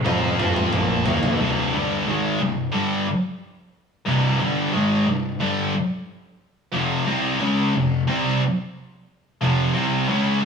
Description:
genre	stoner and doom metal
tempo	90 BPM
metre	4/4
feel	straight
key	C minor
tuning	A4 = 440 Hz
part	thick fuzz guitar	riff	0.1-10.4 s	C2 to F4	-24 LUFS	left 4 dB	distortion
part	thick fuzz guitar	riff	0.1-10.4 s	C2 to F4	-26 LUFS	right 6 dB	distortion
part	tight distorted guitar	riff	0.1-10.4 s	C2 to F4	-24 LUFS	equal	distortion
part	modern bright fingered electric bass	bass	0.1-1.4 s	Bb1 to F2	-28 LUFS	equal	overdrive
part	toms	drums	0.1-1.4 s	none	-24 LUFS	equal	none
room	wet stone room reverb, RT60 1.3 s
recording	rough rehearsal-room recording, small room ambience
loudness	-19 LUFS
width	side -6 dB against mid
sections	0.0-1.4 A section; 1.4-10.4 B section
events	drum fill 0.0-1.4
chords	0.0 Bb5; 1.4 Cm; 6.7 F5

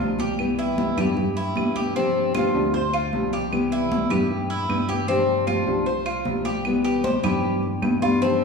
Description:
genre	latin, Cuban son and guajira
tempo	153 BPM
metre	4/4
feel	straight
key	C major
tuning	A4 = 441 Hz
part	nylon-string guitar	accompaniment	0.0-8.4 s	C3 to G4	-25 LUFS	left 2 dB	none
part	Cuban tres	arpeggios	0.0-8.4 s	C4 to C5	-25 LUFS	equal	none
part	picked electric bass	bass	0.0-8.4 s	C2 to G2	-29 LUFS	right 1 dB	none
part	congas	percussion	0.2-8.4 s	none	-28 LUFS	equal	none
part	claves	percussion	0.4-8.0 s	none	-36 LUFS	right 3 dB	none
room	wet recital hall reverb, RT60 1.6 s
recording	recorded in a church or concert hall, small room ambience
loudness	-20 LUFS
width	side -4 dB against mid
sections	0.0-6.6 A section; 6.6-8.4 B section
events	none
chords	0.4 Cmaj7; 2.0 G7sus4; 3.5 Cmaj7; 5.1 G7sus4; 6.6 Cmaj7

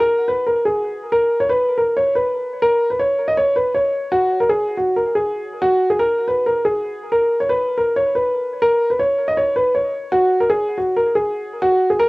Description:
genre	hip hop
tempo	160 BPM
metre	4/4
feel	half-time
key	unclear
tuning	A4 = 440 Hz
part	dark grand piano	solo	0.0-12.1 s	Gb4 to Eb5	-16 LUFS	equal	cassette tape
room	moderate studio reverb, RT60 0.6 s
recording	home recording on cassette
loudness	-16 LUFS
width	side -25 dB against mid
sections	0.0-10.1 A section; 10.1-12.1 B section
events	none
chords	none

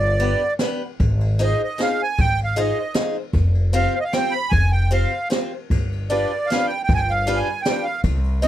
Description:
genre	musette waltz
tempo	154 BPM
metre	3/4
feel	rubato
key	unclear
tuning	A4 = 441 Hz
part	accordion	melody	0.0-8.5 s	D5 to B5	-22 LUFS	right 3 dB	light tremolo tuning
part	upright bass	bass	0.0-8.5 s	F1 to C2	-20 LUFS	equal	none
part	jazz brush drum kit	drums	0.0-8.5 s	kick drum, ride cymbal, snare drum	-24 LUFS	equal	none
part	picked acoustic archtop guitar	accompaniment	0.2-8.5 s	B3 to C5	-24 LUFS	left 2 dB	none
room	little or no reverb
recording	none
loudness	-18 LUFS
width	side -12 dB against mid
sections	0.0-8.5 A section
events	none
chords	0.0 G; 1.0 Ab6; 3.3 Fsus2; 5.7 G7

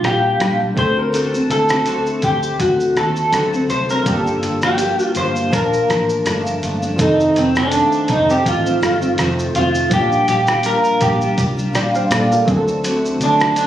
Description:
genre	indie pop, bedroom pop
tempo	82 BPM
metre	4/4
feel	swing 55% on 16ths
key	Bb major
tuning	A4 = 440 Hz
part	electric guitar through a small old amp	melody	0.0-13.7 s	C4 to C5	-17 LUFS	equal	lush chorus, digital delay
part	picked steel-string acoustic guitar	accompaniment	0.0-13.7 s	F2 to F#4	-21 LUFS	left 1 dB	analog chorus, vibrato effect
part	warm analog keys	accompaniment	0.0-13.7 s	Eb3 to A5	-24 LUFS	right 2 dB	chorus, cassette tape
part	vintage muted fingered electric bass	bass	0.0-13.7 s	F1 to Bb2	-24 LUFS	equal	none
part	lo-fi sampler-style drum kit	drums	0.0-13.7 s	hi-hat, kick drum, rim click, shaker	-23 LUFS	equal	none
room	light reverb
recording	recorded on a phone in the room, studio reverb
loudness	-14 LUFS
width	side -11 dB against mid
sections	0.0-7.0 A section; 7.0-13.7 B section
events	clean electric guitar solo 7.0-13.7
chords	0.0 Bb6; 0.8 D7; 4.1 Gm7; 5.5 Bbmaj7; 7.0 F7; 9.9 Bb6; 12.5 D7

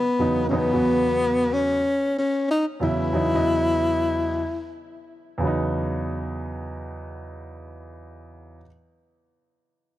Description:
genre	hip hop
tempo	92 BPM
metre	4/4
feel	swing 63% on 16ths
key	unclear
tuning	A4 = 440 Hz
part	breathy tenor saxophone	melody	0.0-4.7 s	B3 to E4	-22 LUFS	left 2 dB	none
part	dark grand piano	accompaniment	0.2-8.7 s	E2 to D#5	-26 LUFS	right 1 dB	none
room	light reverb, studio ambience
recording	dry, close 1970s-style studio recording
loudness	-21 LUFS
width	side -14 dB against mid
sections	0.0-5.4 A section; 5.4-8.0 B section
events	none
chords	0.2 Esus2

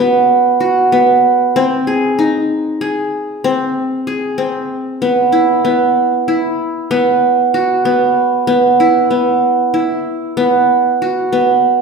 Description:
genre	contemporary instrumental, contemporary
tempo	191 BPM (eighths)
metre	11/8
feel	straight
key	unclear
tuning	A4 = 441 Hz
part	qanun	solo	0.0-11.8 s	B3 to G#4	-11 LUFS	right 2 dB	none
room	wet recital hall reverb, RT60 1.5 s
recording	heard from further back in the room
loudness	-11 LUFS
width	side -5 dB against mid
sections	0.0-11.8 A section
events	none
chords	0.0 F#sus4; 1.6 G#; 5.0 E5

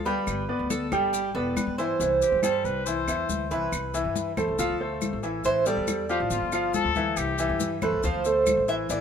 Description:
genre	latin, Cuban son and guajira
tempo	139 BPM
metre	4/4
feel	straight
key	C major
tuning	A4 = 441 Hz
part	Cuban tres	melody	0.0-9.0 s	G4 to E5	-28 LUFS	right 3 dB	none
part	upright bass	bass	0.0-9.0 s	E1 to G2	-34 LUFS	left 1 dB	none
part	bright grand piano	arpeggios	0.1-9.0 s	E3 to G5	-27 LUFS	equal	none
part	maracas	percussion	0.1-9.0 s	none	-37 LUFS	left 7 dB	none
part	claves	percussion	0.3-8.7 s	none	-39 LUFS	right 2 dB	none
part	congas	percussion	0.3-9.0 s	none	-35 LUFS	left 4 dB	none
part	clear trumpet	second line	2.2-7.7 s	F4 to C5	-31 LUFS	left 6 dB	none
room	moderate plate reverb, RT60 3.3 s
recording	minimal, uncompressed stereo recording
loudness	-23 LUFS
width	side -7 dB against mid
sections	0.0-3.7 A section; 3.7-9.0 B section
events	none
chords	0.3 G; 2.0 C; 3.7 Cmaj7; 4.6 Dm7; 5.5 A5; 6.3 G5; 7.2 C; 8.0 Dm7

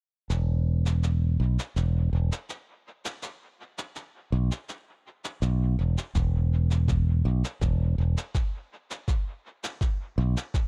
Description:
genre	ambient dub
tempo	82 BPM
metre	4/4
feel	straight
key	unclear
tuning	A4 = 440 Hz
part	fingered electric bass	bass	0.3-10.3 s	E1 to B1	-25 LUFS	equal	none
part	cabasa	drums	0.3-10.7 s	none	-41 LUFS	equal	dub echo
part	electronic kick drum	drums	6.2-10.7 s	none	-29 LUFS	equal	none
room	little or no reverb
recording	echo-heavy mix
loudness	-27 LUFS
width	mono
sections	0.3-10.7 A section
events	none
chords	none

